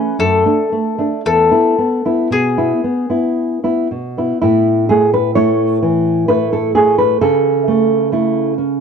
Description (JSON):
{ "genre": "romantic duo for mandolin and classical guitar", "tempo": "55-68 BPM", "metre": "3/4", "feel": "rubato", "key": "A major", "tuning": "A4 = 441 Hz", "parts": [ { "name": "mandolin", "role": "melody", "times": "0.0-3.9 s", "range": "G#4 to B4", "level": "-16 LUFS", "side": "left 4 dB", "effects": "none" }, { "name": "nylon-string guitar", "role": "accompaniment", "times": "0.0-8.8 s", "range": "E2 to C#5", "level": "-13 LUFS", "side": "right 1 dB", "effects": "none" } ], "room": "little or no reverb", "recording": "dry, close 1970s-style studio recording", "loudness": "-12 LUFS", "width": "side -6 dB against mid", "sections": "0.0-4.4 A section; 4.4-8.8 B section", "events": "none", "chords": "0.2 D/F#; 1.2 E; 4.4 A; 7.2 A/C#" }